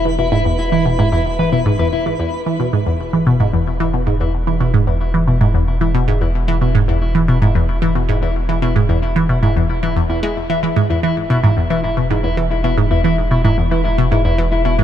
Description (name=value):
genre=ambient, sequencer-driven space music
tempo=112 BPM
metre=4/4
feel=straight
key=E major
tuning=A4 = 440 Hz
part: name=electric guitar at the edge of break-up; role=arpeggios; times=0.0-14.8 s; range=E4 to E5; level=-22 LUFS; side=moving between left 6 dB and right 1 dB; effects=auto-pan, ping-pong delay
part: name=warm sub bass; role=bass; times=0.0-14.8 s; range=E1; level=-20 LUFS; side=equal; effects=none
part: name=twinkling granular texture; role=texture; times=0.0-2.2 s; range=B4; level=-30 LUFS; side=right 2 dB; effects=built-in reverb
part: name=resonant blip pluck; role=riff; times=0.1-14.8 s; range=E2 to G#3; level=-16 LUFS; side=right 1 dB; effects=phaser, ping-pong delay
room=light reverb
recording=none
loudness=-14 LUFS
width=side -10 dB against mid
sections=0.0-2.2 A section; 2.2-14.8 B section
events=fade-in on clean electric guitar 2.2-14.8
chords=0.0 E5; 2.2 N.C.